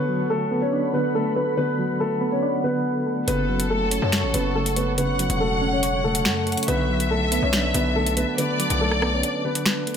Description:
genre	hip hop, drill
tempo	141 BPM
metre	4/4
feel	half-time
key	unclear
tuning	A4 = 441 Hz
part	dark concert grand piano	melody	0.0-10.0 s	A3 to C#5	-25 LUFS	left 3 dB	digital delay
part	soft electric-piano-like synth keys	accompaniment	0.0-10.0 s	C#3 to C#5	-26 LUFS	right 3 dB	chorus, tremolo
part	deep dark ambient pad	sustained chords	0.0-10.0 s	A4 to C#6	-31 LUFS	equal	chorus, built-in reverb
part	rich studio violin section	second line	3.3-9.6 s	A4 to F#5	-27 LUFS	left 2 dB	digital delay
part	distorted 808-style bass	bass	3.3-9.2 s	E1 to F#2	-26 LUFS	equal	distortion
part	drill drum kit	drums	3.3-10.0 s	finger snaps, hi-hat, rim click, snare drum	-25 LUFS	equal	none
room	light reverb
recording	none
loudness	-20 LUFS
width	side -7 dB against mid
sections	0.0-10.0 A section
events	break 9.2-10.0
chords	0.0 Bm7; 3.3 F#m; 6.7 Bm7

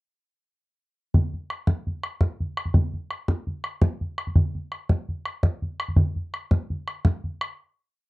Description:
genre	celtic folk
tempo	111 BPM (dotted quarters)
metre	9/8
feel	straight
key	none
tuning	none
part	bodhran	percussion	1.1-7.5 s	none	-22 LUFS	equal	none
room	little or no reverb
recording	dry, close 1970s-style studio recording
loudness	-24 LUFS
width	side -20 dB against mid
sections	1.1-7.6 A section; 7.6-8.1 final hit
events	none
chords	none

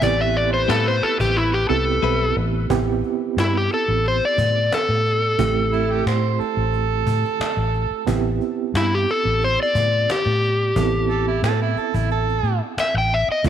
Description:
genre	straight-eighth soul blues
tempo	89 BPM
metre	4/4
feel	straight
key	A minor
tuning	A4 = 440 Hz
part	overdriven slide guitar	melody	0.0-13.5 s	E4 to G5	-20 LUFS	left 1 dB	none
part	bright reed electric piano	accompaniment	0.0-13.5 s	A3 to A4	-26 LUFS	right 12 dB	medium tremolo
part	clear horn section	sustained chords	0.0-2.7 s	A3 to B4	-33 LUFS	equal	none
part	vintage muted fingered electric bass	bass	0.0-13.5 s	A1 to A2	-22 LUFS	left 1 dB	none
part	cajon	drums	0.0-13.5 s	none	-29 LUFS	left 1 dB	none
part	direct-recorded clean electric guitar	stabs	0.7-2.2 s	G3 to B4	-27 LUFS	left 10 dB	none
part	overdriven harmonica	second line	5.7-12.6 s	E4 to C5	-25 LUFS	right 9 dB	none
room	light reverb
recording	1960s-style stereo with parts hard left and right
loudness	-18 LUFS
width	side -9 dB against mid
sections	0.0-2.7 A section; 2.7-13.5 B section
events	electric slide guitar solo 0.0-2.7; kick and snare drop out 1.4-2.7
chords	0.0 Am9

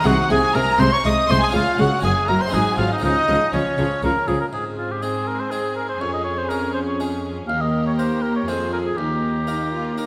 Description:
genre	classical, baroque-style concerto movement with solo episodes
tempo	121 BPM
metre	3/4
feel	straight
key	Db major, Ab major from 4.5 s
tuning	A4 = 443 Hz
part	rich chamber violin section	melody	0.0-10.1 s	Db5 to Eb6	-32 LUFS	equal	none
part	warm oboe	melody	0.0-10.1 s	Db4 to F5	-25 LUFS	equal	none
part	rich chamber violin section	second line	0.0-10.1 s	Eb4 to Eb6	-30 LUFS	equal	none
part	harpsichord	accompaniment	0.0-10.1 s	Eb2 to Bb4	-31 LUFS	equal	none
part	rich chamber viola section	accompaniment	0.1-10.1 s	F3 to Db4	-29 LUFS	equal	none
part	rich chamber double bass section	bass	0.1-4.4 s	Gb1 to Db2	-27 LUFS	equal	none
part	rich symphonic cello section	bass	0.1-10.1 s	Eb2 to Db3	-28 LUFS	equal	none
room	wet scoring stage reverb, RT60 2.0 s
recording	none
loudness	-21 LUFS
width	mono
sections	0.0-4.5 A section; 4.5-10.1 B section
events	none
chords	0.1 Ab/C; 1.5 Db; 2.0 Gb5; 2.5 Ab7; 3.0 Db; 4.5 Ab; 6.0 Db/F; 7.5 Eb; 8.5 Fm; 9.0 Eb

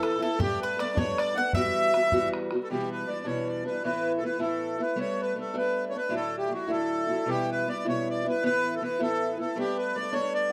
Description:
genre	celtic folk, Celtic jig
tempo	105 BPM (dotted quarters)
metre	6/8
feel	straight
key	E dorian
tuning	A4 = 444 Hz
part	accordion	melody	0.0-10.5 s	F#4 to F#5	-31 LUFS	equal	none
part	mandolin	second line	0.0-2.3 s	G4 to F#5	-33 LUFS	equal	none
part	fingerpicked steel-string acoustic guitar	accompaniment	0.0-10.5 s	D2 to F#4	-32 LUFS	equal	none
part	bodhran	percussion	0.0-2.6 s	none	-35 LUFS	equal	none
room	moderate small room reverb, RT60 0.5 s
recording	none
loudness	-28 LUFS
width	mono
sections	0.0-2.7 A section; 2.7-10.5 A section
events	none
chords	0.4 Gadd9; 1.5 Emadd9; 2.7 Em7; 3.8 Asus2; 5.0 Gadd9; 6.1 Dadd9; 7.3 Em7; 8.4 Asus2; 9.6 Gadd9

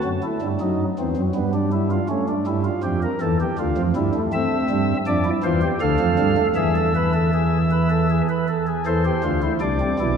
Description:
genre	classical, baroque-style 3-part fugue for pipe organ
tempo	80 BPM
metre	3/4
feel	straight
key	D minor, A minor from 4.3 s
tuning	A4 = 442 Hz
part	pipe organ, flutes	solo	0.0-10.2 s	B1 to F5	-18 LUFS	right 1 dB	none
room	wet church reverb, RT60 3.5 s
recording	none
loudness	-18 LUFS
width	side -6 dB against mid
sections	0.0-8.9 A section; 8.9-10.2 B section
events	none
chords	0.0 B7 (rootless); 1.3 Em/G; 2.1 A7; 3.6 Dm; 4.3 Am; 5.8 Dmadd11; 6.6 E; 8.9 Am

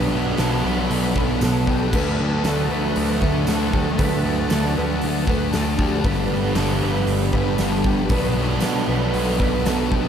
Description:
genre	rock, shoegaze and dream pop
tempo	116 BPM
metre	4/4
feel	straight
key	unclear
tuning	A4 = 440 Hz
part	soft string machine	sustained chords	0.0-10.1 s	D4 to B5	-30 LUFS	equal	ensemble chorus
part	mellow electric guitar	arpeggios	0.0-10.1 s	G4 to B4	-29 LUFS	right 2 dB	ensemble chorus, diffuse ambient delay
part	biting overdriven guitar	riff	0.0-10.1 s	G2 to D4	-25 LUFS	right 7 dB	reverse reverb
part	thick fuzz guitar	riff	0.0-10.1 s	G2 to D4	-24 LUFS	left 6 dB	distortion, wide subtle chorus
part	modern bright picked electric bass	bass	0.0-10.1 s	G1 to D2	-25 LUFS	equal	none
part	huge arena drum kit	drums	0.4-10.0 s	crash cymbal, hi-hat, kick drum, snare drum	-25 LUFS	equal	none
part	tambourine	percussion	0.4-9.8 s	none	-39 LUFS	right 9 dB	none
room	wet huge ambient reverb, RT60 7.3 s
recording	dreamy mix soaked in reverb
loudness	-18 LUFS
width	side -8 dB against mid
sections	0.0-10.1 A section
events	none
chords	0.0 Bm7; 1.9 D; 6.1 Gmaj7; 8.1 Bm7

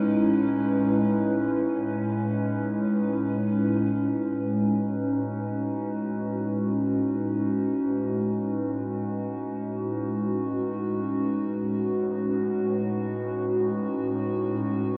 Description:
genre	ambient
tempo	free time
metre	none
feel	none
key	A lydian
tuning	A4 = 440 Hz
part	warbly tape-like pad	solo	0.0-15.0 s	A2 to B4	-27 LUFS	equal	chorus, built-in reverb, phaser, delay
room	wet scoring stage reverb, RT60 1.8 s, digital ambience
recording	worn, warbling old tape, cassette tape, warbly pitch drift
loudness	-27 LUFS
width	mono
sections	0.0-3.9 A section; 3.9-15.0 B section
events	none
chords	0.0 C#m7/A; 3.9 Amaj9

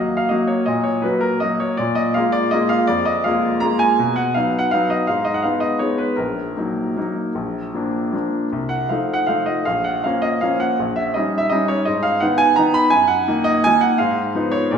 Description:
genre	classical, piano waltz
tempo	149-178 BPM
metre	3/4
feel	rubato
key	Eb minor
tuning	A4 = 440 Hz
part	bright baby grand piano	solo	0.0-14.8 s	Bb1 to Cb6	-17 LUFS	equal	none
room	wet recital hall reverb, RT60 1.7 s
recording	recorded in a church or concert hall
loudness	-17 LUFS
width	side -7 dB against mid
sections	0.0-14.8 A section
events	none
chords	0.0 Ebm; 1.8 Bb5; 4.0 B; 5.1 Abm6; 6.2 Ebm/Bb; 7.4 Bb; 8.5 F7/C; 9.7 Bbm; 10.8 Eb7/Bb; 11.9 Abm; 12.9 Ebm/Gb; 14.0 Fm7b5/Ab

